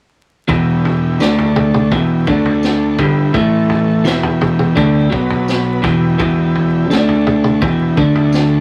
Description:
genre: psychedelic rock.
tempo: 84 BPM.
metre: 4/4.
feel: straight.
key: E minor.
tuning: A4 = 440 Hz.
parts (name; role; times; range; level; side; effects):
combo organ; sustained chords; 0.5-8.6 s; A3 to B4; -28 LUFS; equal; none.
electric guitar at the edge of break-up; riff; 0.5-8.6 s; E2 to D4; -15 LUFS; equal; none.
fuzz picked electric bass; bass; 0.5-8.6 s; E1 to D2; -25 LUFS; equal; overdrive.
vintage drum kit; drums; 0.5-8.5 s; kick drum, snare drum, toms; -23 LUFS; equal; none.
tambourine; percussion; 1.2-8.5 s; none; -40 LUFS; equal; none.
room: wet small room reverb, RT60 0.6 s.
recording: vinyl crackle.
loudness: -14 LUFS.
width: mono.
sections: 0.5-8.6 A section.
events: none.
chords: 0.5 Em; 1.2 D5; 1.9 Em; 2.3 D5; 3.0 Em; 3.3 A5; 4.1 Em; 5.1 B5; 5.8 Em; 6.9 D5; 7.6 Em; 8.0 D5.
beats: | 0.49 1.20 1.92 2.63 | 3.34 4.06 4.77 5.48 | 6.20 6.91 7.62 8.33.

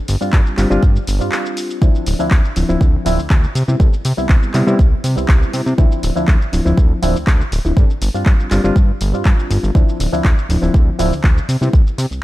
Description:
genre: filtered disco house.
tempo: 121 BPM.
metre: 4/4.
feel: straight.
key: D dorian.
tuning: A4 = 440 Hz.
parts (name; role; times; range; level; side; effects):
fat analog bass; bass; 0.1-12.2 s; D1 to C3; -18 LUFS; equal; sidechain pumping.
punchy analog drum machine; drums; 0.1-12.2 s; handclaps, hi-hat, shaker; -25 LUFS; equal; sidechain pumping on perc, sidechain pumping on hats.
barky reed electric piano; accompaniment; 0.2-11.7 s; F3 to A4; -20 LUFS; left 1 dB; overdrive, phaser, vintage 12-bit sampler grit, sidechain pumping.
electronic kick drum; drums; 0.3-11.8 s; none; -12 LUFS; equal; none.
room: digital ambience.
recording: none.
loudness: -12 LUFS.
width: side -16 dB against mid.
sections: 0.0-12.2 A section.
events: break 1.3-1.8.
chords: 0.0 G7sus4; 1.8 Dm9; 3.6 Cmaj7; 5.8 Dm9; 7.8 G7sus4; 9.8 Dm9; 11.5 Cmaj7(no3).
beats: 0.33 0.82 1.32 | 1.82 2.31 2.81 3.31 | 3.80 4.30 4.79 5.29 | 5.78 6.28 6.78 7.27 | 7.77 8.26 8.76 9.26 | 9.75 10.25 10.74 11.24 | 11.73.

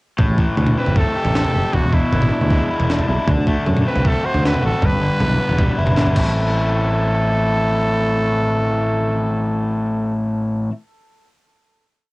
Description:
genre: indie rock.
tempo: 157 BPM.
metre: 4/4.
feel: straight.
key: A dorian.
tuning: A4 = 440 Hz.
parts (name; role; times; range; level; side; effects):
overdriven electric guitar; riff; 0.2-10.7 s; E2 to G4; -20 LUFS; left 1 dB; cassette tape.
picked electric bass; bass; 0.2-10.7 s; E1 to F#2; -21 LUFS; equal; none.
breakbeat sampler-style drum kit; drums; 0.2-6.2 s; crash cymbal, kick drum, snare drum, toms; -20 LUFS; equal; cassette tape.
growling trumpet; melody; 0.8-10.1 s; E4 to C5; -23 LUFS; right 1 dB; cassette tape.
room: light reverb.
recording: home recording on cassette.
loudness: -16 LUFS.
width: side -22 dB against mid.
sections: 0.2-6.3 interlude; 6.3-9.4 final hit.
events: none.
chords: 0.2 Am7; 1.7 E7; 3.3 D7; 4.8 G6; 6.2 Am.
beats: | 0.19 0.58 0.96 1.35 | 1.74 2.12 2.51 2.90 | 3.28 3.67 4.05 4.44 | 4.82 5.20 5.59 5.97 | 6.35 6.73 7.11 7.49 | 7.87 8.25 8.62 9.01.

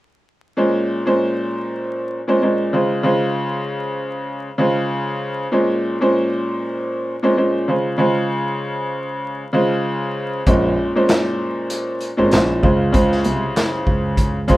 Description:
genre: hip hop, boom-bap hip-hop.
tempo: 97 BPM.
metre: 4/4.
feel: swing 55% on 16ths.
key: Bb minor.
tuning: A4 = 440 Hz.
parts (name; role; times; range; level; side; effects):
bright upright piano; accompaniment; 0.6-14.6 s; Bb2 to C5; -18 LUFS; equal; cassette tape, high-pass filter, low-pass filter.
dark concert grand piano; bass; 10.5-14.6 s; Ab1 to Db2; -20 LUFS; right 1 dB; none.
vintage drum kit; drums; 10.5-14.6 s; handclaps, hi-hat, kick drum, snare drum; -19 LUFS; equal; none.
room: light reverb.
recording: rough home demo mix, vinyl crackle.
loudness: -17 LUFS.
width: side -16 dB against mid.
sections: 0.6-14.6 A section.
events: none.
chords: 0.6 Bbm9; 2.7 Dbmaj7; 5.5 Bbm9; 7.7 Dbmaj7; 10.5 Bbm9; 12.6 Dbmaj7.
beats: | 0.57 1.19 1.81 2.43 | 3.04 3.66 4.28 4.90 | 5.52 6.14 6.75 7.37 | 7.99 8.61 9.23 9.85 | 10.47 11.09 11.70 12.32 | 12.94 13.56 14.18.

